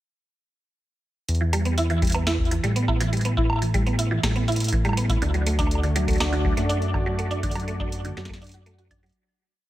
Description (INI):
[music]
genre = IDM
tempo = 122 BPM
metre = 4/4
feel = straight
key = E minor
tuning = A4 = 441 Hz
[part]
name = round analog bass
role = bass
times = 1.3-9.1 s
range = D2 to A2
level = -25 LUFS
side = equal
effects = tube saturation
[part]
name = booming analog drum machine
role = drums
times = 1.3-9.2 s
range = hi-hat, snare drum, woodblock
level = -30 LUFS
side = right 1 dB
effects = dub echo
[part]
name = mallet-like synth pluck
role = arpeggios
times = 1.4-9.1 s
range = D3 to F#4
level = -27 LUFS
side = right 2 dB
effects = ensemble chorus, dub echo
[part]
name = electronic kick drum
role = drums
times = 2.0-9.0 s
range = none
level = -27 LUFS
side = equal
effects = none
[part]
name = warm analog pad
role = sustained chords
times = 5.2-9.1 s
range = A3 to D5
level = -30 LUFS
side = equal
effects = chorus
[sound]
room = light reverb, digital ambience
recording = echo-heavy mix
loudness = -21 LUFS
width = side -15 dB against mid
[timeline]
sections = 1.3-9.2 groove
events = fade-out 6.5-9.2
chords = 1.3 Em; 5.2 D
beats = | 1.28 1.78 2.27 2.76 | 3.25 3.74 4.24 4.73 | 5.22 5.71 6.20 6.70 | 7.19 7.68 8.17 8.66